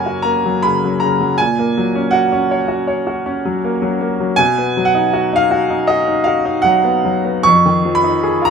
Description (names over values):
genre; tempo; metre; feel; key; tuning
classical, romantic nocturne for solo piano; 80 BPM; 4/4; rubato; F# major; A4 = 441 Hz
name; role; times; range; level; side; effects
bright grand piano; solo; 0.0-8.5 s; F2 to C#6; -13 LUFS; equal; none
room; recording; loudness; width
light reverb; minimal, uncompressed stereo recording; -13 LUFS; side -6 dB against mid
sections
0.0-8.5 A section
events
none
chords
0.0 F#; 1.4 F#/A#; 4.4 B; 7.4 Fm7b5